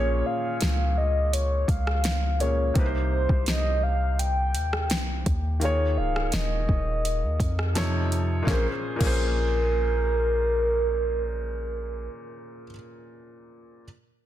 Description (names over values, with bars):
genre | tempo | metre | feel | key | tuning
contemporary R&B | 84 BPM | 4/4 | straight | Bb dorian | A4 = 440 Hz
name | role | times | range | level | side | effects
mellow horn-like synth lead | melody | 0.0-12.1 s | Bb4 to G5 | -28 LUFS | right 1 dB | chorus, digital delay
felt-muted upright piano | accompaniment | 0.0-13.9 s | Bb2 to Db5 | -32 LUFS | equal | none
warm 808-style bass | bass | 0.0-12.1 s | Db1 to F2 | -26 LUFS | equal | none
smooth R&B drum kit | drums | 0.6-9.2 s | crash cymbal, hi-hat, kick drum, rim click, snare drum | -28 LUFS | equal | none
room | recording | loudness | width
digital ambience | dense, heavily limited modern master | -23 LUFS | side -12 dB against mid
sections
0.0-8.5 A section; 8.5-11.3 B section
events
none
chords
0.0 Bbm7; 2.8 Cm7; 5.6 Eb9sus4; 7.8 F7b13; 8.5 Bbm9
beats
0.61 1.33 2.04 | 2.76 3.47 4.18 4.90 | 5.61 6.33 7.04 7.76 | 8.47 9.19 9.90 10.61